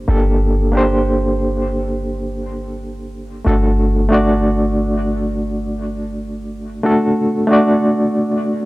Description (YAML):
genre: trip hop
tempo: free time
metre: none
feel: none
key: G harmonic minor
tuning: A4 = 440 Hz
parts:
  - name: barky reed electric piano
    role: accompaniment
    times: 0.0-8.7 s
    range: A3 to D5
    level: -16 LUFS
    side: equal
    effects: tremolo, tape echo
  - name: soft 808-style bass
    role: bass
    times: 0.0-6.8 s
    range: G1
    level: -20 LUFS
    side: equal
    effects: none
room: little or no reverb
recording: dry, gritty hardware recording, cassette tape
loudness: -14 LUFS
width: side -19 dB against mid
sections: 0.0-8.7 A section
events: none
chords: 0.0 Gmadd9; 3.5 D/G